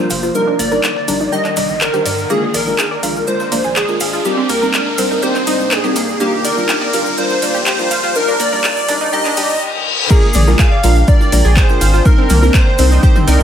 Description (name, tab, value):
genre	progressive house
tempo	123 BPM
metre	4/4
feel	straight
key	unclear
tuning	A4 = 437 Hz
part	plucky unison lead	melody	0.0-13.4 s	G4 to F5	-20 LUFS	equal	ensemble chorus, sidechain pumping, ping-pong delay
part	soft supersaw	second line	0.0-13.4 s	G4 to F5	-23 LUFS	equal	cassette tape, sidechain pumping, low-pass filter, ping-pong delay
part	shimmering ambient pad	sustained chords	0.0-13.4 s	C3 to Eb4	-25 LUFS	right 1 dB	chorus, built-in reverb, sidechain pumping
part	deep mellow chord stab	stabs	0.0-13.4 s	G3 to D5	-21 LUFS	left 1 dB	chorus, phaser, sidechain pumping
part	riser and reverse cymbal	sound effects	0.0-10.1 s	none	-24 LUFS	left 2 dB	none
part	analog pluck	arpeggios	0.1-13.4 s	Bb3 to F5	-22 LUFS	right 1 dB	chorus, sidechain pumping, ping-pong delay
part	round analog bass	bass	0.1-13.4 s	F1 to G2	-16 LUFS	equal	sidechain pumping
part	breakbeat sampler-style drum kit	drums	0.1-13.4 s	hi-hat, shaker, snare drum	-30 LUFS	right 2 dB	none
part	deep house drum kit	drums	0.1-13.4 s	crash cymbal, handclaps, hi-hat, ride cymbal	-20 LUFS	equal	overdrive, studio reverb
part	cabasa	percussion	0.1-13.4 s	none	-29 LUFS	left 4 dB	none
part	electronic kick drum	drums	10.1-13.1 s	none	-11 LUFS	equal	overdrive, studio reverb
part	drifting glass-harmonics texture	texture	10.5-13.4 s	G5	-29 LUFS	right 8 dB	chorus, built-in reverb, sidechain pumping
part	electronic toms and congas	percussion	10.3-13.3 s	none	-20 LUFS	left 4 dB	sidechain pumping on toms, studio reverb, sidechain pumping on perc
room	light reverb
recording	high-pass filter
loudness	-11 LUFS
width	side -9 dB against mid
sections	0.0-10.1 A section; 10.1-13.4 B section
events	build-up 0.0-10.1; riser 0.0-9.6; filter sweep on synth pluck 0.0-10.1; filter sweep on digital synth lead 0.0-10.1; filter sweep on supersaw synth 0.0-10.1; filter sweep 0.0-10.1; reverse cymbal 9.1-10.1; drop 10.1-13.4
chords	0.3 Ebmaj7/G; 2.3 Bb7; 4.3 Cm7; 6.2 Gm7; 8.2 Ebmaj7/G; 10.1 Bb7; 12.1 Cm7